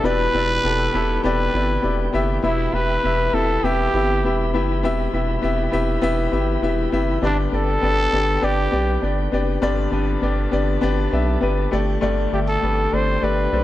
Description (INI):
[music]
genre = piano-driven pop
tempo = 100 BPM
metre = 4/4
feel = straight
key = E minor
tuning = A4 = 440 Hz
[part]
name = growling trumpet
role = melody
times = 0.0-13.6 s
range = D4 to C5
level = -22 LUFS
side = equal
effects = none
[part]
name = bright upright piano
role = accompaniment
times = 0.0-13.6 s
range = G2 to E5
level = -22 LUFS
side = left 3 dB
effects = none
[part]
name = tonewheel organ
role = sustained chords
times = 0.0-13.6 s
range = B2 to B4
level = -32 LUFS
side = right 1 dB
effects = fast rotary speaker
[part]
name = round analog bass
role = bass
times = 0.0-13.6 s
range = E1 to B1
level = -23 LUFS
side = right 1 dB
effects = none
[sound]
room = light reverb, small room ambience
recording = none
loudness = -18 LUFS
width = side -14 dB against mid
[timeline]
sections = 0.0-2.4 A section; 2.4-12.0 B section; 12.0-13.6 C section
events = none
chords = 0.0 Em7; 2.4 Em; 7.2 G; 11.7 Gsus2